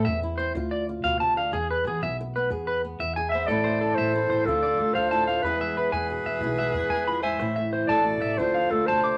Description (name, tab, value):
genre	highlife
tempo	122 BPM (dotted quarters)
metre	12/8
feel	straight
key	A harmonic minor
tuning	A4 = 440 Hz
part	flamenco guitar	accompaniment	0.0-9.2 s	E2 to G#4	-33 LUFS	equal	none
part	electric guitar at the edge of break-up	arpeggios	0.0-9.2 s	G#4 to D6	-29 LUFS	equal	none
part	upright bass	bass	0.0-9.2 s	A1 to E3	-36 LUFS	equal	none
part	warm clarinet	melody	3.3-9.2 s	A4 to E5	-28 LUFS	equal	none
part	growling soprano saxophone	second line	3.3-9.2 s	F4 to C5	-36 LUFS	equal	none
room	moderate club reverb, RT60 0.7 s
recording	none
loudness	-25 LUFS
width	mono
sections	0.0-3.5 A section; 3.5-9.2 B section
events	none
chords	0.0 Am (rootless); 0.5 Dm; 1.5 E; 3.5 Am; 4.5 Dm; 5.4 E; 7.4 Am; 8.4 Dm